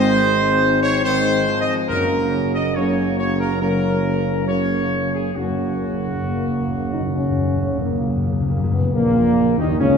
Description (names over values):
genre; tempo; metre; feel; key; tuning
classical, ceremonial fanfare; 69 BPM; 4/4; straight; F# major; A4 = 440 Hz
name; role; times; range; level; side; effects
bright trumpet section; melody; 0.0-10.0 s; A#3 to D#5; -22 LUFS; equal; none
clear trombone section; sustained chords; 0.0-10.0 s; G#2 to F#3; -25 LUFS; right 2 dB; none
dark French horn section; sustained chords; 0.0-10.0 s; G#3 to D#4; -22 LUFS; left 2 dB; none
dark tuba; bass; 0.0-10.0 s; F#1 to D#2; -24 LUFS; right 1 dB; none
timpani; percussion; 1.9-8.9 s; F#2; -24 LUFS; left 1 dB; none
room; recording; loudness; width
wet church reverb, RT60 2.6 s; minimal, uncompressed stereo recording; -17 LUFS; side -6 dB against mid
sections
0.0-8.9 A section; 8.9-10.0 A section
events
timpani fill 5.4-8.9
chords
0.0 G#; 1.9 F#; 8.9 A#madd11